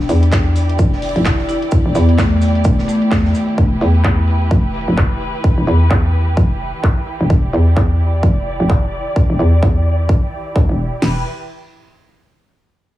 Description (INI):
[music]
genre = bass house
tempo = 129 BPM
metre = 4/4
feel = swing 59% on 16ths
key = E phrygian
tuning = A4 = 440 Hz
[part]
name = muted studio string section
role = sustained chords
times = 0.0-11.2 s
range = E3 to D5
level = -24 LUFS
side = right 1 dB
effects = sidechain pumping, low-pass filter
[part]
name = hollow knocking FM bass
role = bass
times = 0.0-11.2 s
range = E1 to E2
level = -15 LUFS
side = equal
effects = overdrive, sidechain pumping
[part]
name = big rock drum kit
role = drums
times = 0.0-3.5 s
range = hi-hat, shaker, snare drum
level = -32 LUFS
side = right 2 dB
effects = sidechain pumping on hats, high-pass filter on hats, high-pass filter on snare, sidechain pumping on perc, high-pass filter on perc, high-pass filter on room
[part]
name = big-room dance drum kit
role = drums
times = 0.1-11.0 s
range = handclaps, hi-hat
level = -26 LUFS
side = equal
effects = low-pass filter on snare, low-pass filter on hats, low-pass filter on perc
[part]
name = big-room dance drum kit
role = drums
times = 0.3-11.1 s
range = crash cymbal, kick drum, snare drum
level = -14 LUFS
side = equal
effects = none
[part]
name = marimba with soft mallets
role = melody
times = 1.2-3.1 s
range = A3 to E4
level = -20 LUFS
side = left 1 dB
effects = tape echo
[sound]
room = small room ambience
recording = none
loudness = -12 LUFS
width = side -15 dB against mid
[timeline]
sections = 0.0-11.0 A section; 11.0-12.9 B section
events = filter sweep on drum 0.0-11.0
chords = 0.0 Em